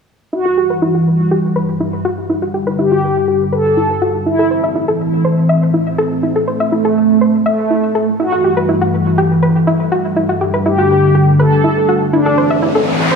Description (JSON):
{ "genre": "techno", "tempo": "122 BPM", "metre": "4/4", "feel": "straight", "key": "E minor", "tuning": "A4 = 437 Hz", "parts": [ { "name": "mellow synth brass", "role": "melody", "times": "0.3-12.8 s", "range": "A3 to A4", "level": "-16 LUFS", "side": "right 1 dB", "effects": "chorus, digital delay" }, { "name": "lush unison pad", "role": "sustained chords", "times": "0.3-13.2 s", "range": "G2 to C4", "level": "-16 LUFS", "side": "equal", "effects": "chorus" }, { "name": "soft round pluck", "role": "arpeggios", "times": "0.3-13.2 s", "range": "E4 to E5", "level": "-17 LUFS", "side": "equal", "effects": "chorus, dub echo" }, { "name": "riser", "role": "sound effects", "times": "12.3-13.2 s", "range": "none", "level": "-18 LUFS", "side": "equal", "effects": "none" } ], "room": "moderate lush hall reverb, RT60 2.7 s", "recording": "studio reverb", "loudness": "-12 LUFS", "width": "side -5 dB against mid", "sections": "0.3-13.2 A section", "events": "filter sweep on synth arpeggio sound 0.3-13.2; filter sweep on analog synth pad 0.3-13.2; riser 12.3-13.2", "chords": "0.3 Emadd9; 4.3 Am; 8.2 Emadd9; 12.1 Am" }